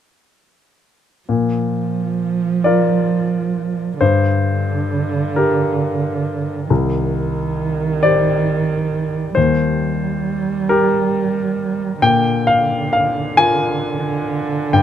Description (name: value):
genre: neoclassical piano and strings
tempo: 45 BPM (dotted quarters)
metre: 6/8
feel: rubato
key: unclear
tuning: A4 = 441 Hz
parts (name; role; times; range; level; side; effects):
- dark cello; second line; 1.3-14.8 s; D3 to G3; -20 LUFS; right 6 dB; none
- warm grand piano; accompaniment; 1.3-14.8 s; C2 to Ab5; -17 LUFS; left 3 dB; none
room: little or no reverb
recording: close, detailed microphones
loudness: -15 LUFS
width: side -10 dB against mid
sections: 1.3-14.8 A section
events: none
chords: 1.3 Bb; 4.0 Gm; 6.7 Cmadd9; 9.4 Eb; 12.0 Bb